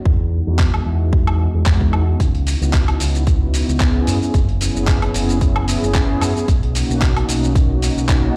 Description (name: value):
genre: nu-disco, nu disco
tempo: 112 BPM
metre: 4/4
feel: swing 55% on 16ths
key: unclear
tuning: A4 = 444 Hz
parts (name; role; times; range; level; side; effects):
- mellow synth brass; accompaniment; 0.0-8.4 s; G#3 to G#4; -25 LUFS; equal; chorus, sidechain pumping, dub echo
- fingered electric bass with an envelope filter; bass; 0.1-8.3 s; F#1 to F#2; -21 LUFS; equal; sidechain pumping
- electronic kick drum; drums; 0.1-8.2 s; none; -18 LUFS; equal; none
- dusty soul sampler-style drum kit; drums; 0.6-8.2 s; handclaps, hi-hat, shaker, woodblock; -27 LUFS; equal; overdrive
room: light reverb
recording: played on a big sound system in a bare room, large studio reverb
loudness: -17 LUFS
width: mono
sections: 0.0-8.4 A section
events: filter sweep on analog polysynth 0.0-8.4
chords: 0.1 Emaj9; 2.2 C#m11; 4.1 F#7sus4; 6.5 Bmaj9